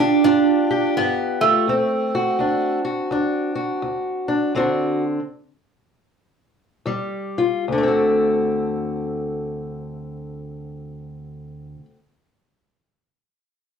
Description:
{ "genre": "acoustic country blues, solo or duo", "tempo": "73-85 BPM", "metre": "4/4", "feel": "swing 62% on 8ths", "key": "D mixolydian", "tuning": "A4 = 441 Hz", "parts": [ { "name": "lap resonator guitar", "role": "melody", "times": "0.0-2.8 s", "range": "A3 to D4", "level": "-18 LUFS", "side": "right 4 dB", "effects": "none" }, { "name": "fingerpicked steel-string acoustic guitar", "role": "accompaniment", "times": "0.0-12.0 s", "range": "D2 to G4", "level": "-21 LUFS", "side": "left 2 dB", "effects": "none" } ], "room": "wet small room reverb, RT60 0.5 s", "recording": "heard from further back in the room", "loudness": "-18 LUFS", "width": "side -6 dB against mid", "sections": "0.0-7.7 A section; 7.7-11.0 B section", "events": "slowing down 1.7-7.7; stop 4.5-6.9", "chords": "0.0 G7; 1.7 D7; 6.9 Ebadd9; 7.7 D7" }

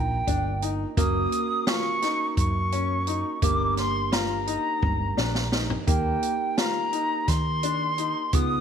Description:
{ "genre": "progressive instrumental, band music in an uneven meter", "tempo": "171 BPM (eighths)", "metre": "7/8", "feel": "straight", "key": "unclear", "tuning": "A4 = 440 Hz", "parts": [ { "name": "concert flute", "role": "melody", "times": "0.0-8.6 s", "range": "G5 to Eb6", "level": "-27 LUFS", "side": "equal", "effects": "none" }, { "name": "bell-like tine electric piano", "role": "accompaniment", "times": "0.0-8.6 s", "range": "Bb3 to Bb4", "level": "-33 LUFS", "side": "right 14 dB", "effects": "none" }, { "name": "woody fretless electric bass", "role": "bass", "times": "0.0-8.6 s", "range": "Gb1 to Eb3", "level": "-29 LUFS", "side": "equal", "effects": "none" }, { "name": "clear baby grand piano", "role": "arpeggios", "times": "0.3-8.6 s", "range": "Bb3 to F4", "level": "-31 LUFS", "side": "left 8 dB", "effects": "none" }, { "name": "open jazz drum kit", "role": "drums", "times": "0.3-8.5 s", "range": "hi-hat, kick drum, snare drum, toms", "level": "-27 LUFS", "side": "right 1 dB", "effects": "none" } ], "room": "light reverb", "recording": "1960s-style stereo with parts hard left and right", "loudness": "-23 LUFS", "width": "side -8 dB against mid", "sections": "0.0-8.6 A section", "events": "drum fill 4.8-5.9", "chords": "0.0 Bb; 1.0 Gb; 3.4 Gm; 5.9 Eb" }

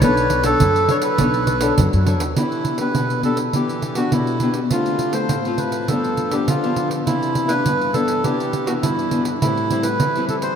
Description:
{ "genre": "samba and choro", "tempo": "102 BPM", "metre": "4/4", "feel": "straight", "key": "E minor", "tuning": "A4 = 438 Hz", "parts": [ { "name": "melodica", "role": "melody", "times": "0.0-10.6 s", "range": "E4 to C#5", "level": "-21 LUFS", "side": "right 2 dB", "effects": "none" }, { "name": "nylon-string guitar", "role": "accompaniment", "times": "0.0-10.6 s", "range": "G2 to C#5", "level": "-22 LUFS", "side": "left 3 dB", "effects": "none" }, { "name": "upright bass", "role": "bass", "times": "0.0-2.3 s", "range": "B1 to F#2", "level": "-20 LUFS", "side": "equal", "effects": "none" }, { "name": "pandeiro", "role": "percussion", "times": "0.0-10.6 s", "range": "none", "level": "-23 LUFS", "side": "right 3 dB", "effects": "none" } ], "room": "wet huge ambient reverb, RT60 7.5 s", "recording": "in a vast, echoing space", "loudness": "-17 LUFS", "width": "side -8 dB against mid", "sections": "0.0-2.4 A section; 2.4-10.6 B section", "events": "none", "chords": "0.0 Bm9; 2.4 Em7; 4.7 Dm7; 5.9 G7; 7.1 Cmaj9; 9.4 Am7" }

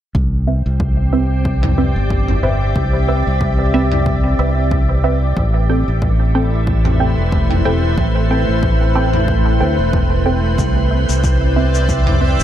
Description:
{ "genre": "ambient dub", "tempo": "92 BPM", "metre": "4/4", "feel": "swing 56% on 16ths", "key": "unclear", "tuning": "A4 = 441 Hz", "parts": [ { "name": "modern bright fingered electric bass", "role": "bass", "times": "0.1-12.4 s", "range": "E1 to D2", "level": "-16 LUFS", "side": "equal", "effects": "none" }, { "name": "electronic kick drum", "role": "drums", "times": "0.1-12.0 s", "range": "none", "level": "-20 LUFS", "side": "equal", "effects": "overdrive" }, { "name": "soft additive organ-like pad", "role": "sustained chords", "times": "0.7-12.4 s", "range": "A3 to E5", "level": "-20 LUFS", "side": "equal", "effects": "ensemble chorus, built-in reverb" }, { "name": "filtered dub chord stab", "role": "stabs", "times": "0.5-12.4 s", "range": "C4 to G5", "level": "-22 LUFS", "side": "right 2 dB", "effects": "phaser, dub echo" }, { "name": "electronic toms and shaker", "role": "drums", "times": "1.6-12.4 s", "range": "none", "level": "-23 LUFS", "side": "equal", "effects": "overdrive" }, { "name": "backwards swelling texture", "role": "texture", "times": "11.2-12.4 s", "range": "E5", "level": "-29 LUFS", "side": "right 6 dB", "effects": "built-in reverb" } ], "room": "light reverb", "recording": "none", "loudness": "-13 LUFS", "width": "side -11 dB against mid", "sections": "0.2-12.4 A section", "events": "none", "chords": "0.2 Cmaj7; 5.4 Am7; 10.6 Cmaj7" }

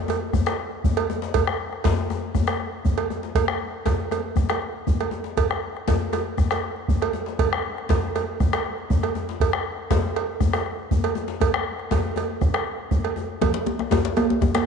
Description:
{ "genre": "west african traditional, West African drum ensemble", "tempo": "119 BPM", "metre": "4/4", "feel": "straight", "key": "none", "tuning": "none", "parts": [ { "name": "bombo", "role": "percussion", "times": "0.1-14.7 s", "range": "none", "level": "-25 LUFS", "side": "equal", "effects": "none" }, { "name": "cowbell", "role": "percussion", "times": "0.1-14.7 s", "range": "none", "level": "-27 LUFS", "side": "right 10 dB", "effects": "none" }, { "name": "djembe", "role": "percussion", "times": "0.1-14.7 s", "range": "none", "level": "-27 LUFS", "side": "left 6 dB", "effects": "none" }, { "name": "congas", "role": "percussion", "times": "13.4-14.7 s", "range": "none", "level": "-26 LUFS", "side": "right 12 dB", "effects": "none" }, { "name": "djembe", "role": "percussion", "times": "13.4-14.7 s", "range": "none", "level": "-24 LUFS", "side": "left 9 dB", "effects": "none" } ], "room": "moderate plate reverb, RT60 3.3 s", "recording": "1960s-style stereo with parts hard left and right, nothing above 10.4 kHz", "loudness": "-21 LUFS", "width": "side -6 dB against mid", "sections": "0.0-13.4 A section; 13.4-14.7 B section", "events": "none", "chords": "none" }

